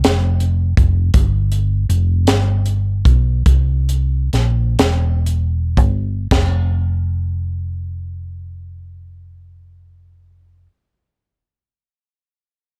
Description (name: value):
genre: slow gospel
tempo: 36-54 BPM (dotted quarters)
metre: 6/8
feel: straight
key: unclear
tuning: A4 = 440 Hz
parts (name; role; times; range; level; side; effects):
- hollow-body short-scale fingered electric bass; bass; 0.0-10.7 s; E1 to C2; -19 LUFS; equal; none
- crisp fusion drum kit; drums; 0.0-6.6 s; hi-hat, kick drum, snare drum, splash cymbal; -18 LUFS; equal; none
room: little or no reverb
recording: none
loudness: -17 LUFS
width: mono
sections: 0.0-6.3 A section; 6.3-12.8 B section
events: slowing down 1.1-6.3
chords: none